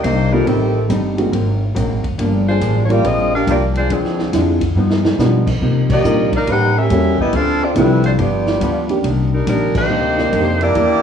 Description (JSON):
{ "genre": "jazz, big band swing", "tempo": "140 BPM", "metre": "4/4", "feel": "swing 66% on 8ths", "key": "C minor", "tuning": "A4 = 435 Hz", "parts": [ { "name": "mellow saxophone section", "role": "melody", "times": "0.0-11.0 s", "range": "Eb3 to F#5", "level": "-17 LUFS", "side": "equal", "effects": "none" }, { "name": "archtop guitar, miked and amplified", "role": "accompaniment", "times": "0.0-11.0 s", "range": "G2 to G4", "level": "-21 LUFS", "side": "left 3 dB", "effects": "none" }, { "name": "upright bass", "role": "bass", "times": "0.0-11.0 s", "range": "Gb1 to C3", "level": "-18 LUFS", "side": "equal", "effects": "none" }, { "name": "swinging big-band drum kit", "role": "drums", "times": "0.0-10.9 s", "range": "crash cymbal, hi-hat, kick drum, ride cymbal, snare drum", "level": "-24 LUFS", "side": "right 1 dB", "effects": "none" }, { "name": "warm baby grand piano", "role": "accompaniment", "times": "0.3-10.7 s", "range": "Eb3 to D5", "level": "-21 LUFS", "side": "right 3 dB", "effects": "none" }, { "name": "muted trombone section", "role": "second line", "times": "10.6-11.0 s", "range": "G3 to D4", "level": "-22 LUFS", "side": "right 7 dB", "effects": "none" } ], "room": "moderate recital hall reverb, RT60 1.7 s", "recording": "worn, warbling old tape, cassette tape, warbly pitch drift, small room reverb", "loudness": "-13 LUFS", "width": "side -8 dB against mid", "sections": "0.0-11.0 A section", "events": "drum fill 4.8-5.2; band accent 5.8, 9.7", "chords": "0.5 Am7b5; 1.3 Ab9; 2.2 Gm7; 3.9 Dm7b5; 4.8 G7b13; 5.6 Cm11; 6.5 A7b9; 7.3 Dm7; 8.2 G7; 9.0 Cm9" }